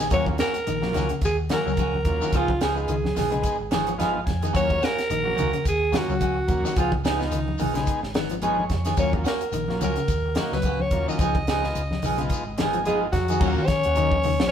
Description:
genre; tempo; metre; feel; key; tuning
afrobeat; 108 BPM; 4/4; swing 56% on 16ths; Eb minor; A4 = 440 Hz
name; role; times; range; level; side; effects
combo organ; accompaniment; 0.0-14.2 s; Gb3 to Ab5; -31 LUFS; left 1 dB; none
electric guitar at the edge of break-up; arpeggios; 0.0-14.5 s; Bb2 to Gb3; -31 LUFS; left 6 dB; none
semi-hollow electric guitar; stabs; 0.0-14.4 s; F3 to Ab4; -29 LUFS; right 2 dB; none
hollow-body short-scale fingered electric bass; bass; 0.0-14.5 s; Ab1 to Eb3; -28 LUFS; equal; none
tight funk drum kit; drums; 0.0-14.5 s; crash cymbal, hi-hat, kick drum, snare drum; -28 LUFS; equal; none
shekere; percussion; 0.0-14.4 s; none; -39 LUFS; left 2 dB; none
raspy alto saxophone; melody; 0.1-14.5 s; Eb4 to Eb5; -26 LUFS; right 1 dB; none
congas; percussion; 0.1-14.5 s; none; -32 LUFS; equal; none
bright trombone; second line; 12.9-14.5 s; Gb3 to Db4; -32 LUFS; right 3 dB; none
room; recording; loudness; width
moderate stone room reverb, RT60 1.0 s; band playing live in one room; -21 LUFS; side -9 dB against mid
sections
0.0-13.4 A section; 13.4-14.5 B section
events
transistor combo organ fill 3.4-4.6, 8.2-9.0, 12.3-13.4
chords
0.1 Ebm7; 2.3 Db9; 4.6 Ebm7; 6.8 Db9; 9.0 Ebm7; 11.2 Db9; 13.4 Ebm7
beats
| 0.12 0.67 1.23 1.78 | 2.33 2.89 3.44 4.00 | 4.55 5.11 5.66 6.21 | 6.77 7.32 7.88 8.43 | 8.98 9.54 10.09 10.64 | 11.20 11.75 12.30 12.86 | 13.41 13.96

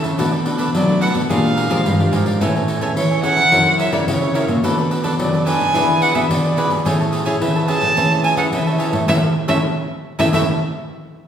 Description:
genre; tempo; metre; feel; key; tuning
samba and choro; 108 BPM; 4/4; straight; A major; A4 = 439 Hz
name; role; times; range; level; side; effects
cavaquinho; accompaniment; 0.0-10.4 s; D4 to A5; -24 LUFS; right 2 dB; none
nylon-string guitar; accompaniment; 0.0-10.4 s; F#2 to B4; -23 LUFS; left 2 dB; none
nylon-string guitar; bass; 0.0-10.4 s; F#2 to F#3; -22 LUFS; equal; none
pandeiro; percussion; 0.0-10.5 s; none; -21 LUFS; left 1 dB; none
rich violin; melody; 0.8-10.4 s; C#5 to A5; -19 LUFS; right 2 dB; none
room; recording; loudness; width
wet recital hall reverb, RT60 1.6 s; recorded in a church or concert hall; -15 LUFS; side -9 dB against mid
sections
0.0-11.3 A section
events
band accent 9.1-11.3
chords
0.2 Bm7; 1.3 Bb6; 2.4 Amaj9; 3.5 F#7; 4.6 Bm7; 5.7 E7; 6.9 Amaj7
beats
| 0.19 0.74 1.30 1.86 | 2.41 2.97 3.52 4.08 | 4.64 5.19 5.75 6.30 | 6.86 7.41 7.97 8.53 | 9.08 9.64 10.19

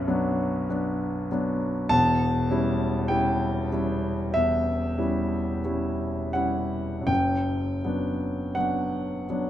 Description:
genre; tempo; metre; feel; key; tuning
classical, romantic nocturne for solo piano; 40-51 BPM; 4/4; rubato; unclear; A4 = 439 Hz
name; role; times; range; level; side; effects
warm concert grand piano; solo; 0.0-9.5 s; E1 to A5; -24 LUFS; equal; none
room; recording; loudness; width
moderate recital hall reverb, RT60 1.4 s; close, detailed microphones; -24 LUFS; side -12 dB against mid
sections
0.0-9.5 A section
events
none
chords
0.0 Bm; 1.9 C#dim/E; 7.1 Bm/F#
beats
0.69 | 1.90 3.10 4.35 5.64 | 7.09 8.56

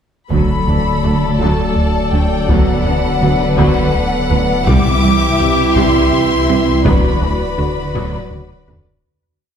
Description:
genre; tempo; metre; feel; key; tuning
cinematic, hybrid orchestral and electronic film score; 55 BPM (dotted quarters); 6/8; straight; B phrygian; A4 = 440 Hz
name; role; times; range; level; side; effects
warm symphonic violin section; melody; 0.3-8.6 s; F#5 to D6; -21 LUFS; left 3 dB; none
warm studio violin section; second line; 0.3-8.8 s; G4 to E5; -22 LUFS; left 3 dB; none
warm symphonic viola section; accompaniment; 0.3-8.8 s; E3 to A4; -22 LUFS; right 1 dB; none
dark French horn section; sustained chords; 0.3-8.7 s; E3 to F#4; -20 LUFS; right 1 dB; none
resonant blip pluck; arpeggios; 0.3-8.9 s; C3 to B4; -25 LUFS; equal; none
smooth synth bass; riff; 0.3-8.9 s; C2 to D3; -20 LUFS; right 1 dB; none
rich symphonic cello section; bass; 0.3-8.8 s; C2 to D2; -23 LUFS; right 3 dB; none
sub bass with octave; bass; 0.3-9.0 s; D1 to C2; -23 LUFS; equal; none
warm symphonic double bass section; bass; 0.3-8.8 s; C2 to D2; -23 LUFS; right 2 dB; none
taiko ensemble; drums; 0.3-9.0 s; none; -19 LUFS; left 1 dB; none
room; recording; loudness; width
wet scoring stage reverb, RT60 1.6 s; heard from further back in the room; -12 LUFS; side -8 dB against mid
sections
0.3-9.0 theme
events
fade-out 6.9-9.0; drum fill 8.0-9.0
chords
0.3 D; 2.5 Bm/D; 4.7 C; 6.9 Bm/D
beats
| 0.32 1.41 | 2.50 3.59 | 4.68 5.77 | 6.86 7.95

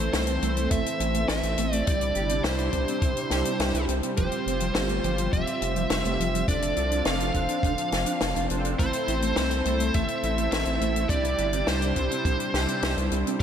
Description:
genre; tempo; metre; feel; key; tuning
synthwave; 104 BPM; 4/4; straight; unclear; A4 = 440 Hz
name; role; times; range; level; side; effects
bluesy overdriven lead guitar; melody; 0.0-13.4 s; C5 to F5; -29 LUFS; equal; distortion, slapback echo, ping-pong delay
brassy analog pad; sustained chords; 0.0-13.4 s; C3 to F4; -32 LUFS; left 1 dB; chorus, vintage 12-bit sampler grit, sidechain pumping
mellow electric guitar; riff; 0.0-13.4 s; F3 to A4; -34 LUFS; right 2 dB; ensemble chorus, slapback echo, digital delay
mellow synth brass; stabs; 0.0-13.4 s; C4 to D5; -32 LUFS; right 4 dB; chorus, slapback echo, digital delay
round analog bass; bass; 0.0-13.4 s; F1 to C2; -29 LUFS; equal; none
compact cocktail drum kit; drums; 0.0-13.4 s; hi-hat, snare drum; -31 LUFS; left 2 dB; studio reverb
kick drum; drums; 0.7-13.4 s; none; -29 LUFS; equal; studio reverb
room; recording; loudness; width
moderate lush hall reverb, RT60 2.0 s; big arena sound; -23 LUFS; side -8 dB against mid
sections
0.0-13.4 A section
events
none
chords
0.0 Am; 1.9 Cadd9; 4.2 Fsus2; 6.5 Dm7/F; 8.8 Am; 11.1 Cadd9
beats
0.14 0.71 1.29 | 1.87 2.44 3.02 3.60 | 4.17 4.75 5.33 5.91 | 6.48 7.06 7.64 8.21 | 8.79 9.37 9.94 10.52 | 11.10 11.67 12.25 12.83 | 13.40

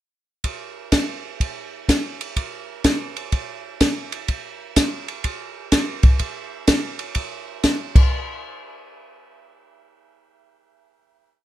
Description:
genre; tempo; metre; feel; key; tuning
jazz; 125 BPM; 4/4; swing 66% on 8ths; none; none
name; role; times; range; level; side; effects
compact cocktail drum kit; drums; 0.4-8.0 s; crash cymbal, hi-hat, kick drum, ride cymbal, snare drum; -19 LUFS; equal; none
room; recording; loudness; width
moderate small room reverb, RT60 0.5 s; rough home demo mix; -20 LUFS; side -14 dB against mid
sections
0.4-8.1 A section; 8.1-11.4 final hit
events
none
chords
none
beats
| 0.43 0.92 1.40 1.88 | 2.36 2.84 3.32 3.81 | 4.29 4.76 5.25 5.72 | 6.21 6.68 7.16 7.64

